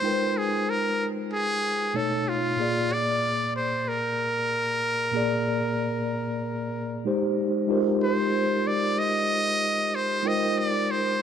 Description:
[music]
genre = R&B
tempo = 94 BPM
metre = 4/4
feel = swing 64% on 16ths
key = Ab lydian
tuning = A4 = 440 Hz
[part]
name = trumpet with metal mute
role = melody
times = 0.0-11.2 s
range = F4 to Eb5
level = -26 LUFS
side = equal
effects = analog delay
[part]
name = mellow tine electric piano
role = accompaniment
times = 0.0-11.2 s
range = Bb2 to G5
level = -26 LUFS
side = equal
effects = medium stereo tremolo, analog delay
[sound]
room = light reverb, studio reverb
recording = echo-heavy mix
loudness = -23 LUFS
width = side -8 dB against mid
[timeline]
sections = 0.0-7.7 A section; 7.7-11.2 B section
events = none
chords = 0.0 Abmaj13; 1.9 B9; 2.6 Bb7; 7.0 Abmaj7; 7.7 Abmaj13

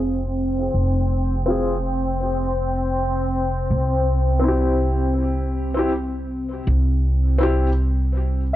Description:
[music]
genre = trip hop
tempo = 81 BPM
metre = 4/4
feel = swing 58% on 16ths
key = unclear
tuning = A4 = 440 Hz
[part]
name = deep dark ambient pad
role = sustained chords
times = 0.0-8.6 s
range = C4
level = -24 LUFS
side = left 1 dB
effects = chorus, built-in reverb
[part]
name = upright bass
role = bass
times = 0.0-8.6 s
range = F1 to C2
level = -21 LUFS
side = equal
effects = none
[part]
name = felt-muted upright piano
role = accompaniment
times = 1.5-7.7 s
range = C4 to Ab4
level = -24 LUFS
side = left 2 dB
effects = tremolo, tape echo
[sound]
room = light reverb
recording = worn, warbling old tape, cassette tape, warbly pitch drift, low-pass filter, nothing above 10.6 kHz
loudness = -19 LUFS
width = side -14 dB against mid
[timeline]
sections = 0.0-8.6 A section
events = filter sweep 0.0-8.6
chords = 0.0 F5; 3.7 C

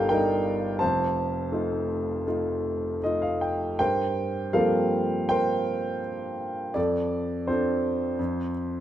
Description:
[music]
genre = classical, lyrical solo piano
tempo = 82 BPM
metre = 4/4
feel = rubato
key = G minor from 3.8 s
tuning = A4 = 442 Hz
[part]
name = warm grand piano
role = solo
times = 0.0-8.8 s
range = F1 to Bb5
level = -24 LUFS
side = equal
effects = none
[sound]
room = moderate recital hall reverb, RT60 1.3 s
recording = minimal, uncompressed stereo recording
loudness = -24 LUFS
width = side -11 dB against mid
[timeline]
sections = 0.0-3.8 A section; 3.8-8.8 B section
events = grand piano fill 2.6-3.8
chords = 0.0 Ebmaj7/G; 0.8 F7; 3.8 Gm11; 6.8 Dm7/F; 8.2 F

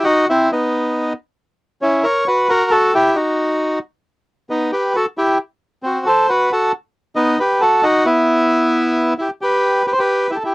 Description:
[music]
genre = musette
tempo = 135 BPM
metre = 3/4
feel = straight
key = unclear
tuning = A4 = 439 Hz
[part]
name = bandoneon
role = solo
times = 0.0-10.5 s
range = B3 to C#5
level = -14 LUFS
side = equal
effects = none
[sound]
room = little or no reverb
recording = dry, close 1970s-style studio recording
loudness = -14 LUFS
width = side -21 dB against mid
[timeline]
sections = 0.0-9.4 A section; 9.4-10.5 B section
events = none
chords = 0.0 B; 1.4 F#; 2.7 B; 5.4 F#dim; 6.7 B; 8.1 E5; 9.4 Em

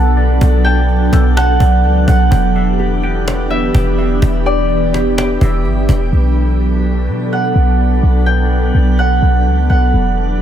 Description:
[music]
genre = hip hop, atmospheric cloud-rap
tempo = 126 BPM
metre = 4/4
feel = half-time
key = unclear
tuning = A4 = 441 Hz
[part]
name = Celtic harp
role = melody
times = 0.0-10.4 s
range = D5 to G5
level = -19 LUFS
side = right 2 dB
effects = ping-pong delay
[part]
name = glassy FM pad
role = sustained chords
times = 0.0-10.4 s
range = E3 to A4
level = -17 LUFS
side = right 1 dB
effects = ensemble chorus, built-in reverb
[part]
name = mellow electric guitar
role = arpeggios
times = 0.0-6.1 s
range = G4 to A5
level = -25 LUFS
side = right 2 dB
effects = phaser, ping-pong delay
[part]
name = clean 808-style bass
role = bass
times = 0.0-10.4 s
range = E1 to B2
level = -13 LUFS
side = equal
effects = none
[part]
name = cajon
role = drums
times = 0.2-6.3 s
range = none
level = -21 LUFS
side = equal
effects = none
[sound]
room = light reverb, studio reverb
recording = none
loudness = -11 LUFS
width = side -10 dB against mid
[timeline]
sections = 0.0-6.1 A section; 6.1-10.4 B section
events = none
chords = 0.0 Bm7; 2.3 Em7; 6.1 Bm7

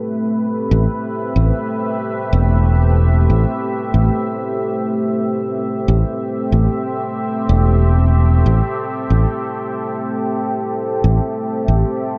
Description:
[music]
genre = ambient dub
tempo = 93 BPM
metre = 4/4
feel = straight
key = A minor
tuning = A4 = 440 Hz
[part]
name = deep dark ambient pad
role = sustained chords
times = 0.0-12.2 s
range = A3 to E5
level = -22 LUFS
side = equal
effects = chorus, built-in reverb
[part]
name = fingered electric bass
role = bass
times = 0.7-11.8 s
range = E1 to A1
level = -15 LUFS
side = equal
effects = none
[sound]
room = moderate concert hall reverb, RT60 2.0 s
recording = none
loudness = -17 LUFS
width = mono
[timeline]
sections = 0.0-12.2 A section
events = none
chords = 0.0 Am9

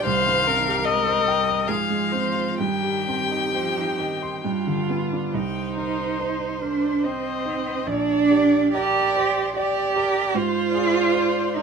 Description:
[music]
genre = classical, slow romantic movement for piano quartet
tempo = 62-77 BPM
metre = 3/4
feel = rubato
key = C minor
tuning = A4 = 439 Hz
[part]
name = warm violin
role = melody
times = 0.0-11.6 s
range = Bb4 to G5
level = -26 LUFS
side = left 8 dB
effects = none
[part]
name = warm cello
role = second line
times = 0.0-11.6 s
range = Eb3 to G4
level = -23 LUFS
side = right 4 dB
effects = none
[part]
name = clear grand piano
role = accompaniment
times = 0.0-11.6 s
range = Bb1 to Eb6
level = -28 LUFS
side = right 2 dB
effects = none
[part]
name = rich viola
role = accompaniment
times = 0.0-11.6 s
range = G4 to D5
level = -28 LUFS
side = right 1 dB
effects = none
[sound]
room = moderate studio reverb, RT60 0.6 s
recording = minimal, uncompressed stereo recording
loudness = -20 LUFS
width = side -6 dB against mid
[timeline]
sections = 0.0-5.3 A section; 5.3-11.6 B section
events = none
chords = 0.1 Cm; 1.7 Fm/Ab; 2.6 Cm/G; 4.4 G; 5.3 Cm; 7.9 Gm/Bb; 10.3 Fm/Ab

